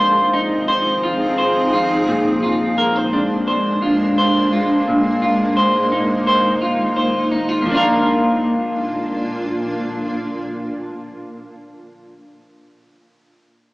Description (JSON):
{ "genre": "dream pop", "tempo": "86 BPM", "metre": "4/4", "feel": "straight", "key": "Bb mixolydian", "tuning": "A4 = 440 Hz", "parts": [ { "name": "granular cloud pad", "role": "sustained chords", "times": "0.0-11.1 s", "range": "Bb2 to Ab4", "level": "-20 LUFS", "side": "equal", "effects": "built-in reverb, cassette tape" }, { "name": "clean electric guitar", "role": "arpeggios", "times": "0.0-11.3 s", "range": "Bb2 to C5", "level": "-17 LUFS", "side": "equal", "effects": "lush chorus, cassette tape, analog delay" } ], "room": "wet studio ambience, RT60 0.5 s", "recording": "home recording on cassette, small speaker sound", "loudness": "-15 LUFS", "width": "side -21 dB against mid", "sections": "0.0-7.7 A section; 7.7-10.5 B section", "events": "none", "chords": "0.0 Fm7; 2.1 Bb9; 4.9 Bb9sus4; 7.7 Bb" }